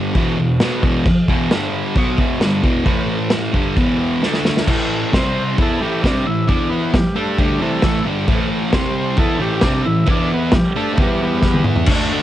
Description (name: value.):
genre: garage rock duo or trio.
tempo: 133 BPM.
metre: 4/4.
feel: straight.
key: unclear.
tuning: A4 = 440 Hz.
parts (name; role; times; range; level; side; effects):
thick fuzz guitar; riff; 0.0-12.2 s; E2 to G4; -18 LUFS; equal; distortion, cassette tape.
vintage drum kit; drums; 0.1-12.0 s; crash cymbal, kick drum, snare drum, toms; -18 LUFS; equal; none.
overdriven combo organ; melody; 5.1-11.7 s; E3 to C5; -23 LUFS; right 1 dB; cassette tape.
room: little or no reverb.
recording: home recording on cassette, nothing above 11.0 kHz.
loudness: -15 LUFS.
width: side -13 dB against mid.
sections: 0.0-4.7 A section; 4.7-11.9 B section.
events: drum fill 4.2-4.7, 11.4-11.9.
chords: 0.2 E5; 1.5 G5; 2.0 E5; 2.9 A5; 3.5 E5; 4.2 D5; 4.7 A5; 5.1 C5; 5.6 A5; 6.5 E5; 6.9 A5; 8.7 C5; 9.2 A5; 10.1 E5; 10.5 A7sus4; 11.0 E5.